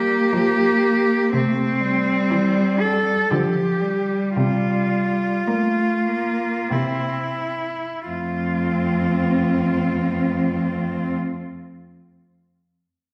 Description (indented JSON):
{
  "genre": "classical, lyrical piece for cello ensemble",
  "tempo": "41-62 BPM",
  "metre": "3/4",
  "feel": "rubato",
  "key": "F major",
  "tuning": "A4 = 440 Hz",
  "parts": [
    { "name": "clear cello", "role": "melody", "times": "0.0-11.1 s", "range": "C4 to A4", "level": "-25 LUFS", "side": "equal", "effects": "none" },
    { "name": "clear cello", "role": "second line", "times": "0.0-11.1 s", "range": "E3 to C4", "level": "-29 LUFS", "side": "equal", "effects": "none" },
    { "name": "warm cello", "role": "accompaniment", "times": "0.0-11.1 s", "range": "F3 to C4", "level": "-25 LUFS", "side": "equal", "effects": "none" },
    { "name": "dark cello", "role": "bass", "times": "1.3-11.1 s", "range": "F2 to D3", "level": "-27 LUFS", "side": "equal", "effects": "none" }
  ],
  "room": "wet recital hall reverb, RT60 1.5 s",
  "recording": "heard from further back in the room",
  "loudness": "-21 LUFS",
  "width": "mono",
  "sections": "0.0-8.1 A section; 8.1-11.9 B section",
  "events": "slowing down 0.0-8.1",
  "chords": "0.0 Gm7; 1.3 C; 3.3 Dm; 4.4 C7sus4; 8.1 F"
}